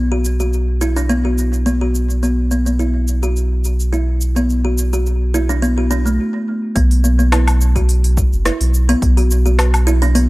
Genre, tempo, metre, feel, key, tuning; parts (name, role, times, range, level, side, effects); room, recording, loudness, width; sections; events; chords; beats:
organic downtempo; 106 BPM; 4/4; swing 54% on 16ths; B minor pentatonic; A4 = 440 Hz
warm sub bass; bass; 0.0-10.3 s; F#1 to B1; -15 LUFS; equal; sidechain pumping
kalimba; arpeggios; 0.1-10.3 s; A3 to F#4; -19 LUFS; equal; analog delay
deep house drum kit; drums; 0.2-10.3 s; cabasa, hi-hat, rim click, woodblock; -23 LUFS; equal
electronic kick drum; drums; 6.8-9.1 s; -16 LUFS; equal
little or no reverb; dry, gritty hardware recording; -14 LUFS; side -20 dB against mid
0.0-6.8 A section; 6.8-10.3 B section
stop 6.2-6.8
0.0 B5
0.53 1.10 1.66 | 2.23 2.79 3.36 3.93 | 4.49 5.06 5.63 6.19 | 6.76 7.32 7.89 8.46 | 9.02 9.59 10.15